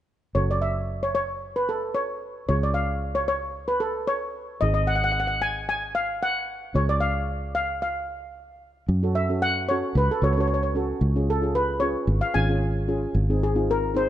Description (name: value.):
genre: calypso.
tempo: 112 BPM.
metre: 4/4.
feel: swing 54% on 16ths.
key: F# minor.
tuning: A4 = 440 Hz.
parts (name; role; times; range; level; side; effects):
steel pan; melody; 0.3-14.1 s; G#4 to G#5; -25 LUFS; left 1 dB; none.
steel pan; accompaniment; 0.4-14.1 s; B#3 to A4; -29 LUFS; equal; none.
fingered electric bass; bass; 0.4-14.1 s; F#1 to F#2; -25 LUFS; equal; none.
room: light reverb, small room ambience.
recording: nothing above 10.7 kHz.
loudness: -22 LUFS.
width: side -12 dB against mid.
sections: 0.4-8.9 A section; 8.9-14.1 B section.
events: none.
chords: 0.4 F#m; 2.5 C#; 4.6 G#; 6.8 C#; 8.9 F#m; 11.0 C#; 13.2 G#.